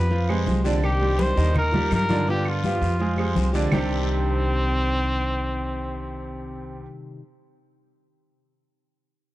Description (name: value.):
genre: latin, Cuban son and guajira.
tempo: 166 BPM.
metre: 4/4.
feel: straight.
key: C harmonic minor.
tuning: A4 = 440 Hz.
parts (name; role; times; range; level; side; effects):
warm trumpet; melody; 0.0-6.9 s; C4 to C5; -28 LUFS; equal; none.
flamenco guitar; accompaniment; 0.0-7.2 s; C3 to G4; -30 LUFS; left 3 dB; none.
bright concert grand piano; arpeggios; 0.0-6.9 s; C3 to F5; -28 LUFS; right 4 dB; none.
upright bass; bass; 0.0-6.8 s; C2 to G2; -25 LUFS; equal; none.
congas; percussion; 0.1-3.8 s; none; -28 LUFS; left 1 dB; none.
guiro; percussion; 0.1-3.8 s; none; -40 LUFS; left 10 dB; none.
claves; percussion; 0.3-3.8 s; none; -38 LUFS; right 4 dB; none.
room: little or no reverb.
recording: dry, close 1970s-style studio recording.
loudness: -20 LUFS.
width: side -16 dB against mid.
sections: 0.8-3.7 A section; 3.7-6.6 B section.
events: none.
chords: 0.1 Fmadd9; 0.8 Cmadd9; 1.6 Ebadd9; 2.3 G7; 3.0 Fmadd9; 3.7 Cmadd9.